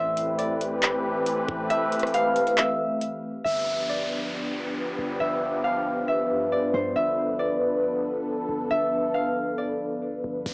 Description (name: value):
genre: hip hop, atmospheric cloud-rap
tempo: 137 BPM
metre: 4/4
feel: half-time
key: unclear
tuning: A4 = 440 Hz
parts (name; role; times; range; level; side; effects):
- concert harp; melody; 0.0-10.5 s; C5 to F5; -26 LUFS; equal; cassette tape, analog delay, plate reverb
- sweeping resonant pad; sustained chords; 0.0-10.5 s; E3 to B4; -26 LUFS; left 1 dB; wide subtle chorus, cassette tape
- warm 808-style bass; bass; 0.0-10.5 s; G1 to G2; -41 LUFS; equal; none
- trap drum kit; drums; 0.2-3.1, 10.5 s; handclaps, hi-hat, kick drum, rim click; -26 LUFS; equal; cassette tape
- downlifter; sound effects; 3.5-7.0, 10.5 s; none; -35 LUFS; equal; none
room: moderate booth ambience, RT60 0.2 s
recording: home recording on cassette, small speaker sound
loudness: -23 LUFS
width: side -30 dB against mid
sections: 0.0-3.5 A section; 3.5-10.5 B section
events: kick muted 1.7-3.5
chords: 0.0 Am9; 3.5 G7